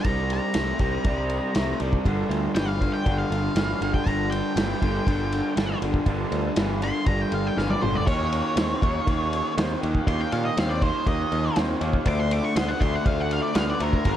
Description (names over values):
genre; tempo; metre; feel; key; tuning
blues rock power trio and southern rock; 120 BPM; 4/4; straight; G minor; A4 = 441 Hz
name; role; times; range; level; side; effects
octave-fuzz lead guitar; melody; 0.0-14.2 s; Bb4 to D6; -30 LUFS; equal; distortion
overdriven tonewheel organ; sustained chords; 0.0-14.2 s; Bb3 to C5; -37 LUFS; right 5 dB; none
raw garage guitar; riff; 0.0-14.2 s; G2 to C4; -27 LUFS; equal; overdrive
modern bright picked electric bass; bass; 0.0-14.2 s; G1 to Bb2; -28 LUFS; equal; none
vintage drum kit; drums; 0.0-14.2 s; crash cymbal, kick drum, ride cymbal, snare drum, toms; -27 LUFS; equal; none
room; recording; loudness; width
little or no reverb; none; -22 LUFS; side -11 dB against mid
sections
0.0-14.2 A section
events
lead electric guitar solo 0.0-14.2; drum fill 7.6-8.1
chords
0.1 Cm7; 2.1 Gm7; 8.1 Eb7; 12.1 D7#9